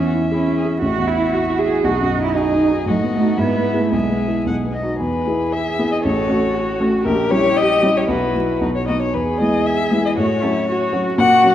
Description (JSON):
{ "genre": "quick classical-period movement for piano quartet", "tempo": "117 BPM", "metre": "2/4", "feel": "rubato", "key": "E major", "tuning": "A4 = 438 Hz", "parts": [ { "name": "muted violin", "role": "melody", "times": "0.0-11.5 s", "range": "D#4 to F#5", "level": "-21 LUFS", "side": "left 3 dB", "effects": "none" }, { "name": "muted cello", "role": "second line", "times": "0.0-11.5 s", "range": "F#3 to A4", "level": "-22 LUFS", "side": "right 4 dB", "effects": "none" }, { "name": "muted violin", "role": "second line", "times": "0.0-11.5 s", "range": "D#4 to F#5", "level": "-26 LUFS", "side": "left 2 dB", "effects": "none" }, { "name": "dark grand piano", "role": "accompaniment", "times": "0.0-11.5 s", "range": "A1 to G#4", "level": "-19 LUFS", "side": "equal", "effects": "none" } ], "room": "wet scoring stage reverb, RT60 1.9 s", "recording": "dark, warm production, vinyl crackle", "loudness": "-16 LUFS", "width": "side -11 dB against mid", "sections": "0.0-5.0 A section; 5.0-11.5 B section", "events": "none", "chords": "0.0 C#m/E; 0.8 F#m7/A; 1.8 B; 2.9 B7/A; 3.4 E/G#; 3.9 E/B; 4.5 B; 5.0 E; 6.0 F#m/A; 7.1 A#dim7; 8.1 Bsus4; 8.6 B; 9.1 E; 10.2 F#m/A" }